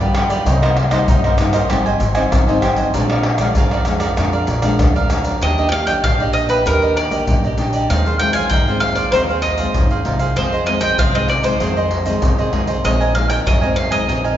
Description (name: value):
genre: samba and choro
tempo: 97 BPM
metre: 4/4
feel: straight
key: Eb major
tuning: A4 = 440 Hz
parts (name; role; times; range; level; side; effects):
- cavaquinho; accompaniment; 0.0-14.4 s; D4 to Ab5; -21 LUFS; right 2 dB; none
- nylon-string guitar; accompaniment; 0.0-14.4 s; F2 to G4; -22 LUFS; left 2 dB; none
- upright bass; bass; 0.0-14.4 s; Ab1 to G2; -22 LUFS; equal; none
- egg shaker, pandeiro, tamborim and surdo; percussion; 0.0-14.4 s; none; -19 LUFS; equal; none
- bowl-back mandolin; melody; 5.4-14.4 s; Bb4 to Ab5; -19 LUFS; right 1 dB; none
room: wet recital hall reverb, RT60 1.7 s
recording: recorded in a church or concert hall, nothing above 7.7 kHz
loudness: -14 LUFS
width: side -11 dB against mid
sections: 0.0-5.4 A section; 5.4-14.4 B section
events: none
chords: 0.5 Cm7; 1.7 Abmaj7; 2.9 Bb7; 5.4 Ebmaj7; 7.9 Ab6/Eb; 12.8 Bb9sus4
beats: | 0.47 1.09 1.71 2.32 | 2.94 3.56 4.18 4.80 | 5.42 6.04 6.66 7.28 | 7.89 8.51 9.13 9.75 | 10.37 10.99 11.61 12.23 | 12.85 13.47 14.09